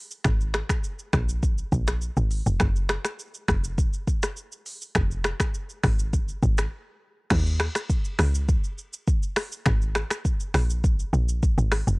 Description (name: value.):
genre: afrobeats.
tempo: 102 BPM.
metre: 4/4.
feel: straight.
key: unclear.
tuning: A4 = 442 Hz.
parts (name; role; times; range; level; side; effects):
afro-pop drum kit; drums; 0.1-12.0 s; crash cymbal, finger snaps, hi-hat, kick drum, rim click, shaker; -24 LUFS; equal; vintage 12-bit sampler grit.
woody log drum bass; bass; 0.3-12.0 s; F1 to Eb2; -24 LUFS; equal; none.
room: little or no reverb.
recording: dry, gritty hardware recording.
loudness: -23 LUFS.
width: side -28 dB against mid.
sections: 0.0-7.3 A section; 7.3-12.0 B section.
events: break 6.7-7.3.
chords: none.